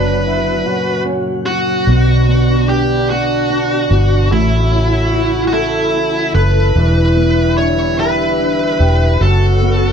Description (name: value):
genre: six-eight pop ballad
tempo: 49 BPM (dotted quarters)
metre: 6/8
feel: straight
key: B minor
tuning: A4 = 440 Hz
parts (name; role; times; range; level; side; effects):
- high-gain lead guitar; melody; 0.0-9.9 s; E4 to C#5; -18 LUFS; left 1 dB; distortion
- warm French horn section; second line; 0.0-9.9 s; D4 to F#4; -22 LUFS; right 3 dB; ping-pong delay
- nylon-string guitar; accompaniment; 0.0-9.9 s; F#2 to A4; -18 LUFS; equal; double-tracked left and right
- tonewheel organ; sustained chords; 0.0-9.9 s; A#2 to F#5; -25 LUFS; right 1 dB; slow rotary speaker
- vintage muted fingered electric bass; bass; 0.0-9.9 s; E1 to B1; -14 LUFS; equal; none
room: light reverb, small room ambience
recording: dark, warm production, nothing above 10.3 kHz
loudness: -12 LUFS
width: side -7 dB against mid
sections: 0.0-1.9 A section; 1.9-9.9 A section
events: none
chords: 0.0 Bm/F#; 0.6 F#; 1.9 Bm; 4.3 A; 6.8 Em7; 9.2 F#sus4